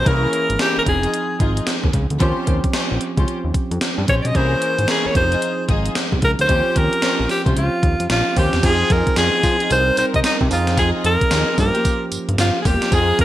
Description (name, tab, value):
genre	R&B, new jack swing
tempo	112 BPM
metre	4/4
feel	swing 63% on 16ths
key	F minor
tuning	A4 = 440 Hz
part	breathy alto saxophone	melody	0.0-13.2 s	Eb4 to Eb5	-19 LUFS	equal	none
part	barky tine electric piano	accompaniment	0.0-13.2 s	E3 to Bb4	-26 LUFS	right 4 dB	none
part	fat analog bass	bass	0.0-13.2 s	E1 to F3	-21 LUFS	equal	none
part	warm studio string section	stabs	0.1-13.2 s	Bb3 to C5	-26 LUFS	left 3 dB	none
part	gated 80s digital drum machine	drums	0.1-13.2 s	crash cymbal, hi-hat, kick drum, snare drum, tambourine	-20 LUFS	equal	gated reverb, gated reverb snare
room	moderate plate reverb, RT60 1.1 s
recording	bright 1980s-style digital production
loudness	-16 LUFS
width	side -14 dB against mid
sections	0.1-8.6 A section; 8.6-13.2 B section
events	none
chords	0.1 C7b9b13; 0.9 Fm7; 2.2 Eb13; 4.3 C7b9b13; 5.2 Fm7; 6.5 Eb13; 8.6 Fm7; 9.7 Cm7; 10.5 Fm7; 11.6 Gm7b5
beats	| 0.06 0.60 1.13 1.67 | 2.21 2.74 3.28 3.81 | 4.35 4.88 5.42 5.96 | 6.49 7.03 7.56 8.10 | 8.63 9.17 9.71 10.24 | 10.78 11.31 11.85 12.38 | 12.92